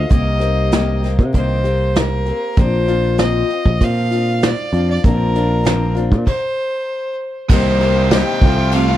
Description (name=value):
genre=folk rock and heartland rock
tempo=97 BPM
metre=4/4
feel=straight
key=C dorian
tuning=A4 = 442 Hz
part: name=bright fiddle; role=melody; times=0.0-9.0 s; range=Bb4 to G5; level=-21 LUFS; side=equal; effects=tape echo
part: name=picked old ladder-braced acoustic guitar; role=accompaniment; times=0.0-9.0 s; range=Bb2 to G4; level=-21 LUFS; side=left 6 dB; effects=none
part: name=picked electric bass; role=bass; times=0.0-9.0 s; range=Bb1 to C3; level=-17 LUFS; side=right 1 dB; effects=none
part: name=soft brush drum kit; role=drums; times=0.1-8.9 s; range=crash cymbal, hi-hat, kick drum, snare drum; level=-16 LUFS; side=right 1 dB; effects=none
part: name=tonewheel organ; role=sustained chords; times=7.5-9.0 s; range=A4 to C6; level=-31 LUFS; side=right 1 dB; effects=none
part: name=biting overdriven guitar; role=riff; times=7.5-9.0 s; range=C3 to G4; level=-21 LUFS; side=right 3 dB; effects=none
room=little or no reverb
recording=none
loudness=-14 LUFS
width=side -13 dB against mid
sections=0.0-7.5 A section; 7.5-9.0 B section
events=stop 6.3-7.5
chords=0.1 Cm7; 2.6 Bbadd9; 7.5 Cm7; 8.4 F/C